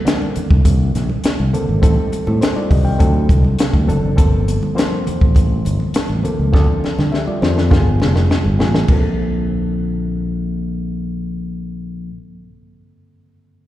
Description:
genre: lush 1970s-style soul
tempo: 102 BPM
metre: 4/4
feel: straight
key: Bb major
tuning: A4 = 442 Hz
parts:
  - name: reed electric piano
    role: accompaniment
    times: 0.0-13.7 s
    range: D3 to G5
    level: -22 LUFS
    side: left 1 dB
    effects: spring reverb, plate reverb, slapback echo
  - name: compact cocktail drum kit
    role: drums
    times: 0.1-9.0 s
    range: crash cymbal, hi-hat, kick drum, snare drum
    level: -15 LUFS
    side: equal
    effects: none
  - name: congas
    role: percussion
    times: 0.1-9.2 s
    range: none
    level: -26 LUFS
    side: right 5 dB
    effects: none
  - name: fingered electric bass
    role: bass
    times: 0.4-12.1 s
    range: F1 to D3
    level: -17 LUFS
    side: equal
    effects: none
room: light reverb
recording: live gig heard through the venue's PA, recital hall reverb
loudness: -14 LUFS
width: side -14 dB against mid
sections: 0.0-8.9 A section; 8.9-11.2 B section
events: drum fill 6.5-8.9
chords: 0.0 Bbmaj9; 1.8 Am7b5; 3.0 D7; 4.2 Gm11; 6.5 Dm7; 7.7 G7b9; 8.9 Bbmaj9

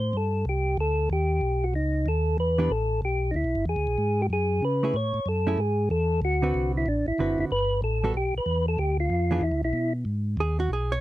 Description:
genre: jazz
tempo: 188 BPM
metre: 4/4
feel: swing 63% on 8ths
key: unclear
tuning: A4 = 439 Hz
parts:
  - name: percussive tonewheel organ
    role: melody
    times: 0.0-9.9 s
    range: D4 to C#5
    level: -26 LUFS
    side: equal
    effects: slow rotary speaker
  - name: mellow tonewheel organ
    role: bass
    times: 0.0-11.0 s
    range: F#1 to C#3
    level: -26 LUFS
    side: equal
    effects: slow rotary speaker
  - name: hollow-body jazz guitar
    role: accompaniment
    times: 2.6-2.7, 4.8-11.0 s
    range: D3 to C#5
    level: -28 LUFS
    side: right 3 dB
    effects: none
room: little or no reverb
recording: dry, close 1970s-style studio recording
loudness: -23 LUFS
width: side -15 dB against mid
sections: 0.0-10.1 A section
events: none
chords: 0.0 Am7; 1.1 B7; 2.4 Em7; 3.7 E13; 4.9 Amaj7; 6.2 D13; 7.5 Gadd9; 8.8 Bdim; 9.4 E5; 10.1 C#7sus2 (rootless)

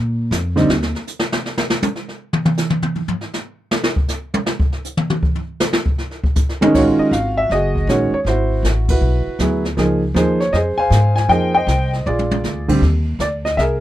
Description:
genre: jazz piano trio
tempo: 158 BPM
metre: 4/4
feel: swing 66% on 8ths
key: unclear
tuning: A4 = 438 Hz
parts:
  - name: upright bass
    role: bass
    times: 0.0-0.9, 6.7-13.8 s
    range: Gb1 to Bb2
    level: -19 LUFS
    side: equal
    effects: none
  - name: jazz brush drum kit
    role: drums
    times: 0.3-13.8 s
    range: brushed snare drum, crash cymbal, hi-hat, kick drum, snare drum, toms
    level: -19 LUFS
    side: equal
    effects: none
  - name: warm concert grand piano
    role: melody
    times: 0.6-0.7, 6.6-13.8 s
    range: D3 to Ab5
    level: -16 LUFS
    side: right 1 dB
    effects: none
room: little or no reverb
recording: none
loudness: -15 LUFS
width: side -13 dB against mid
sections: 0.0-6.7 A section; 6.7-13.8 B section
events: grand piano solo 0.0-6.7; drum solo 0.7-6.7; band accent 8.8; drum fill 12.1-12.4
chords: 0.0 Bb5; 0.7 N.C.; 6.7 Ebm11; 8.3 Ab7alt; 9.8 Dbmaj9; 11.3 Fm9; 12.1 Bb7; 12.8 N.C.

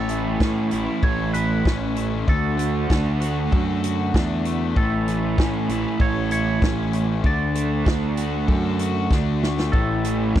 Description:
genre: indie rock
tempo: 96 BPM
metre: 4/4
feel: straight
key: A major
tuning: A4 = 439 Hz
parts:
  - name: twangy electric guitar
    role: melody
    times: 0.0-10.4 s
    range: A4 to D5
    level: -30 LUFS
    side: right 2 dB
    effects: analog chorus, tape echo
  - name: crunchy overdriven guitar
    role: riff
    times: 0.0-10.4 s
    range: A2 to A4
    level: -27 LUFS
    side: left 11 dB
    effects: none
  - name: crunchy overdriven guitar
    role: riff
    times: 0.0-10.4 s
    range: A2 to F#4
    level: -26 LUFS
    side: right 9 dB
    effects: wide subtle chorus
  - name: fuzz picked electric bass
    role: bass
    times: 0.0-10.4 s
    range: A1 to A2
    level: -24 LUFS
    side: equal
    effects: overdrive, transformer saturation
  - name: vintage drum kit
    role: drums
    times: 0.1-10.4 s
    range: hi-hat, kick drum, snare drum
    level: -22 LUFS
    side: equal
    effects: none
room: little or no reverb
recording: dry, close 1970s-style studio recording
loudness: -19 LUFS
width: side -11 dB against mid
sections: 0.0-10.4 A section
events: drum fill 9.1-9.7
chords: 0.0 A; 2.3 D; 4.8 A; 7.3 D; 9.7 A

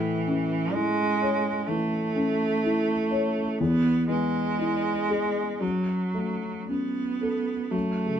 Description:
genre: neoclassical piano and strings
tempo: 55-64 BPM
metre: 4/4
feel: rubato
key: F# minor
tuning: A4 = 439 Hz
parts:
  - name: rich cello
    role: second line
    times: 0.0-8.2 s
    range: E3 to B3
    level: -26 LUFS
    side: right 4 dB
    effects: none
  - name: felt-muted upright piano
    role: accompaniment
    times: 0.0-8.2 s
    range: E2 to C#5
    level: -27 LUFS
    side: left 3 dB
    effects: none
room: moderate studio reverb, RT60 0.8 s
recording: band playing live in one room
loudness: -24 LUFS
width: side -9 dB against mid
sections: 0.0-7.7 A section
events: none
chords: 0.0 A; 3.6 E; 5.6 F#m

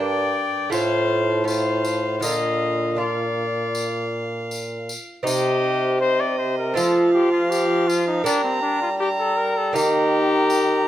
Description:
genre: classical, renaissance-style consort dance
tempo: 80 BPM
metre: 4/4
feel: straight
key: C dorian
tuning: A4 = 436 Hz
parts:
  - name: warm cornet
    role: melody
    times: 0.0-10.9 s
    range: C4 to Eb5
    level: -24 LUFS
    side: left 4 dB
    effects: none
  - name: rich violin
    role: second line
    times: 0.0-10.9 s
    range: Eb5 to Bb5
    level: -28 LUFS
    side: right 2 dB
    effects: none
  - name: lute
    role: accompaniment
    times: 0.0-10.9 s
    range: G2 to F4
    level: -25 LUFS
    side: right 2 dB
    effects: none
  - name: clear bassoon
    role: bass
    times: 0.0-10.9 s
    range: G2 to G3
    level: -24 LUFS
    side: right 1 dB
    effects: none
  - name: tambourine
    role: percussion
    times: 0.7-10.8 s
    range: none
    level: -32 LUFS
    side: left 2 dB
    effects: none
room: moderate stone room reverb, RT60 1.0 s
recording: none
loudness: -19 LUFS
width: side -12 dB against mid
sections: 0.0-5.3 A section; 5.3-10.9 A section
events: none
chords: 0.0 Gm; 0.7 F/A; 2.2 Bb; 5.3 Cm; 6.8 F; 8.3 Gm; 9.7 Eb

